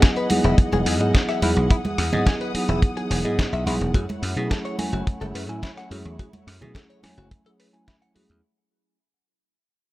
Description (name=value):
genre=nu-disco, nu disco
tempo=107 BPM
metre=4/4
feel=straight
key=F# dorian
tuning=A4 = 439 Hz
part: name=mellow tine electric piano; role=accompaniment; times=0.0-8.4 s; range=F#3 to G#5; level=-26 LUFS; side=right 1 dB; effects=sidechain pumping, analog delay
part: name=dark studio string section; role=sustained chords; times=0.0-8.4 s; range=E3 to D#6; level=-31 LUFS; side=left 1 dB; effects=sidechain pumping
part: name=direct-recorded clean electric guitar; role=riff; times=0.0-8.2 s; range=D#4 to F#5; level=-31 LUFS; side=left 4 dB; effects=wide subtle chorus, analog delay
part: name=dusty soul sampler-style drum kit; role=drums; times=0.0-8.4 s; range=hi-hat, rim click, snare drum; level=-29 LUFS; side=equal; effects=none
part: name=kick drum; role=drums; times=0.0-8.0 s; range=none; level=-18 LUFS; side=equal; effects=none
part: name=congas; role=percussion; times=0.3-8.3 s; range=none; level=-31 LUFS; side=right 2 dB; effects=none
part: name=dry thumbed slap bass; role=bass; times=0.4-8.4 s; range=E1 to B2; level=-24 LUFS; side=equal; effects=tube saturation
room=small room reverb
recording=none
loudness=-20 LUFS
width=side -17 dB against mid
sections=0.0-8.4 A section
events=drop 0.0-8.4; fade-out 0.0-8.4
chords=0.0 Emaj9; 3.9 F#m7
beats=0.02 0.58 1.15 | 1.71 2.27 2.83 3.39 | 3.95 4.51 5.07 5.63 | 6.19 6.75 7.31 7.87